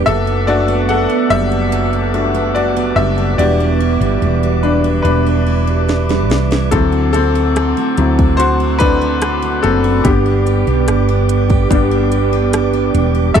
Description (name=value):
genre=pop ballad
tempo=72 BPM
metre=4/4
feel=straight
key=G major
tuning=A4 = 440 Hz
part: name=bright upright piano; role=accompaniment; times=0.0-13.4 s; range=F#3 to F#5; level=-17 LUFS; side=left 5 dB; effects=none
part: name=percussive tonewheel organ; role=sustained chords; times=0.0-13.4 s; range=C4 to D6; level=-22 LUFS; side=right 1 dB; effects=fast rotary speaker
part: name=picked steel-string acoustic guitar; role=arpeggios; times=0.0-13.4 s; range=E2 to A4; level=-19 LUFS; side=right 14 dB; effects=none
part: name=woody fretless electric bass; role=bass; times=0.0-13.4 s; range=E1 to D2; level=-16 LUFS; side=equal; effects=none
part: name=house drum kit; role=drums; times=5.9-13.4 s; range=hi-hat, kick drum, rim click, snare drum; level=-16 LUFS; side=equal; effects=none
room=light reverb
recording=dry, close 1970s-style studio recording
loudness=-12 LUFS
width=side -8 dB against mid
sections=0.0-13.4 A section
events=upright piano solo 0.0-13.4; drum fill 5.9-6.7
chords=0.1 Bm7/F#; 3.4 Em7; 6.7 D7; 10.1 G